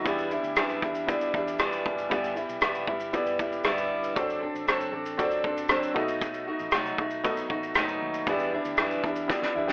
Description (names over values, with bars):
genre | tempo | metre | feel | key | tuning
acoustic pop | 117 BPM | 4/4 | straight | E minor | A4 = 443 Hz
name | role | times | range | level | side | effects
felt-muted upright piano | accompaniment | 0.0-9.7 s | B3 to G5 | -31 LUFS | equal | none
fingerpicked steel-string acoustic guitar | accompaniment | 0.0-9.7 s | E2 to A4 | -29 LUFS | equal | none
vintage muted fingered electric bass | bass | 0.1-9.7 s | E1 to F#2 | -46 LUFS | equal | none
loose indie drum kit | drums | 0.1-9.7 s | kick drum, rim click, shaker, snare drum | -28 LUFS | equal | none
room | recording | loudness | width
moderate studio reverb, RT60 0.6 s | telephone sound | -25 LUFS | side -30 dB against mid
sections
0.0-9.7 A section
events
drum fill 9.3-9.7; felt piano fill 9.3-9.7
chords
0.1 Em7; 2.1 G6; 4.2 D7/F#; 6.0 B7; 8.3 Em7